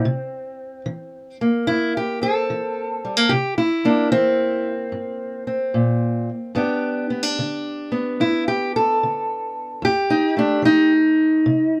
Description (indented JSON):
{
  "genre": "acoustic country blues, solo or duo",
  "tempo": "74 BPM",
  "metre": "4/4",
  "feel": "swing 66% on 8ths",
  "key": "C mixolydian",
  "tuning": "A4 = 442 Hz",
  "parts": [
    { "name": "fingerpicked steel-string acoustic guitar", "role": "solo", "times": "0.0-11.8 s", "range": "F2 to A4", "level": "-21 LUFS", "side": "equal", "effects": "none" }
  ],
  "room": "wet booth ambience, RT60 0.2 s",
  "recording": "none",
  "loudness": "-20 LUFS",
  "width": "mono",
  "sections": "0.0-11.8 A section",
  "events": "none",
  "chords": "0.1 C7; 6.6 G; 9.8 F7"
}